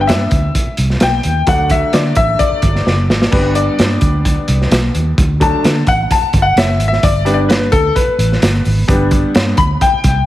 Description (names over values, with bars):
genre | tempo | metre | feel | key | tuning
uptempo 1960s-style soul | 130 BPM | 4/4 | straight | G major | A4 = 443 Hz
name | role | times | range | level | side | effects
bright concert grand piano | accompaniment | 0.0-10.3 s | F#3 to B5 | -16 LUFS | left 2 dB | none
vintage muted fingered electric bass | bass | 0.0-10.2 s | F#1 to D3 | -16 LUFS | right 1 dB | none
crunchy breakbeat drum kit | drums | 0.1-10.2 s | hi-hat, kick drum, snare drum, splash cymbal | -15 LUFS | equal | none
room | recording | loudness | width
moderate large studio reverb, RT60 1.2 s | heavily compressed radio sound | -11 LUFS | side -14 dB against mid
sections
0.0-10.3 A section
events
grand piano solo 0.0-10.3; drum fill 2.9-3.3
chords
0.0 G; 1.5 D; 3.3 G; 5.2 D; 7.0 G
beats
0.08 0.55 1.01 | 1.47 1.94 2.40 2.86 | 3.33 3.79 4.25 4.72 | 5.18 5.64 6.11 6.57 | 7.03 7.49 7.96 8.42 | 8.88 9.35 9.81